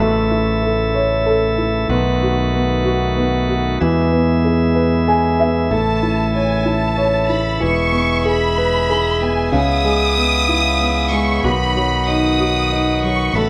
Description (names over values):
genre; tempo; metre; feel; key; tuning
six-eight pop ballad; 63 BPM (dotted quarters); 6/8; straight; E major; A4 = 440 Hz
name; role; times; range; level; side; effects
dark upright piano; accompaniment; 0.0-13.5 s; B2 to G#5; -21 LUFS; equal; none
bright tonewheel organ; sustained chords; 0.0-13.5 s; B2 to F#4; -24 LUFS; equal; overdrive, stopped rotary speaker
fingered electric bass; bass; 0.0-13.5 s; E1 to E2; -23 LUFS; equal; none
rich studio violin section; second line; 5.7-13.5 s; G#5 to D#6; -22 LUFS; equal; none
room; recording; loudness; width
moderate large studio reverb, RT60 1.2 s; band playing live in one room; -17 LUFS; mono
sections
0.0-13.5 A section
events
upright piano fill 4.8-5.7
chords
0.0 A; 1.9 B7; 3.8 E; 5.7 A; 7.6 E; 9.5 C#m7; 11.4 B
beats
0.94 | 1.90 2.85 | 3.81 4.76 | 5.71 6.67 | 7.62 8.58 | 9.53 10.49 | 11.44 12.40 | 13.35